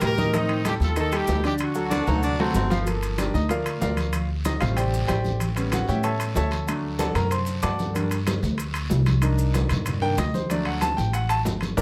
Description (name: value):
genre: latin, salsa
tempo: 189 BPM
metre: 4/4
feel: straight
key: unclear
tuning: A4 = 439 Hz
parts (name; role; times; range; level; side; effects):
- brilliant horn section; melody; 0.0-2.5 s; C4 to Bb4; -30 LUFS; equal; none
- bright concert grand piano; accompaniment; 0.0-11.8 s; D3 to D6; -29 LUFS; equal; none
- upright bass; bass; 0.0-11.8 s; G1 to A2; -28 LUFS; equal; none
- congas; percussion; 0.0-11.8 s; none; -32 LUFS; equal; none
- guiro; percussion; 0.0-11.8 s; none; -43 LUFS; equal; none
- maracas; percussion; 0.0-11.8 s; none; -44 LUFS; equal; none
- timbales; percussion; 0.0-11.8 s; none; -35 LUFS; equal; none
- warm baritone saxophone; second line; 1.9-2.8 s; C4 to Eb4; -29 LUFS; equal; none
room: light reverb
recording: close, detailed microphones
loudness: -24 LUFS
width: mono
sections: 0.0-2.9 A section; 2.9-11.8 B section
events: drum fill 2.1-2.9; grand piano solo 2.9-11.8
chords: 0.3 Am7b5; 1.6 D7; 2.9 Gm7; 4.1 D7sus4; 5.4 A7; 6.7 D; 8.0 Gm; 9.2 Cm7; 10.5 D